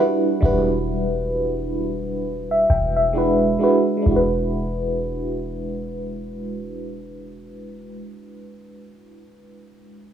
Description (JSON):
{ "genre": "contemporary R&B", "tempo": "66 BPM", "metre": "4/4", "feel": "swing 58% on 16ths", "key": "unclear", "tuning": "A4 = 441 Hz", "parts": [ { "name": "FM electric piano with tremolo", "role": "accompaniment", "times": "0.0-10.1 s", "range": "G3 to G5", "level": "-21 LUFS", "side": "equal", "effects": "phaser" }, { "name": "clean 808-style bass", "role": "bass", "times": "0.4-8.0 s", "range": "E1", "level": "-25 LUFS", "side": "equal", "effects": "none" } ], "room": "light reverb", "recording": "dry, gritty hardware recording, low-pass filter, small room ambience", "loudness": "-19 LUFS", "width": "side -9 dB against mid", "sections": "0.0-4.1 A section; 4.1-7.7 B section", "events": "none", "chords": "0.0 Em9; 3.1 E7", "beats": "| 0.42 1.33 2.24 3.15 | 4.06 4.97 5.88 6.78" }